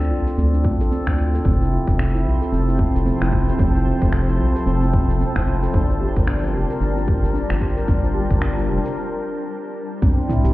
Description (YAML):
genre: organic downtempo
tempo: 112 BPM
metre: 4/4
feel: swing 58% on 16ths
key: unclear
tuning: A4 = 440 Hz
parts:
  - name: handpan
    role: arpeggios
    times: 0.0-10.5 s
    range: C4 to Bb4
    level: -24 LUFS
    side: equal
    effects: tape echo
  - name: round analog bass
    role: bass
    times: 0.0-10.5 s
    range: F1 to D2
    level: -20 LUFS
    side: equal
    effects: none
  - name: organic electronic drum kit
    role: drums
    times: 0.0-10.5 s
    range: cabasa, finger snaps, hi-hat, toms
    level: -29 LUFS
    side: equal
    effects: studio ambience
  - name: electronic kick drum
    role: drums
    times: 0.6-10.1 s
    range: none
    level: -19 LUFS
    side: equal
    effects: studio ambience
  - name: ethereal airy pad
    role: sustained chords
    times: 1.8-10.5 s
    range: F3 to A5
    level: -28 LUFS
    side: left 1 dB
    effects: ensemble chorus, built-in reverb, phaser, sidechain pumping
  - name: twinkling granular texture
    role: texture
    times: 2.0-9.0 s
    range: C4 to C5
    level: -34 LUFS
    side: equal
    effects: built-in reverb
room: light reverb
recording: heard muffled through a wall, stone room reverb, EQ, nothing above 10.8 kHz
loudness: -17 LUFS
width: side -17 dB against mid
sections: 0.0-10.0 A section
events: break 9.0-10.0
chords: 0.0 Dm7; 1.5 Fmaj7; 5.7 Gm7; 10.0 Cadd9